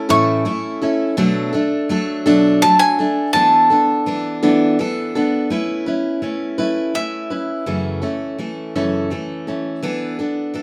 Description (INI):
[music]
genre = folk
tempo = 55 BPM (dotted quarters)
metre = 6/8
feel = straight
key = A major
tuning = A4 = 440 Hz
[part]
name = bowl-back mandolin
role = melody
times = 0.0-9.4 s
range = E5 to C#6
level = -18 LUFS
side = equal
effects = none
[part]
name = picked steel-string acoustic guitar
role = accompaniment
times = 0.0-10.6 s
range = F#2 to B4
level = -20 LUFS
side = equal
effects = none
[sound]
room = light reverb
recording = band playing live in one room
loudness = -18 LUFS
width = mono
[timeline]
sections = 0.0-5.5 A section; 5.5-10.6 B section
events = none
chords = 0.0 A; 1.2 Bm7; 3.3 E7sus4; 5.5 Aadd9; 7.7 F#m7; 9.8 E7sus4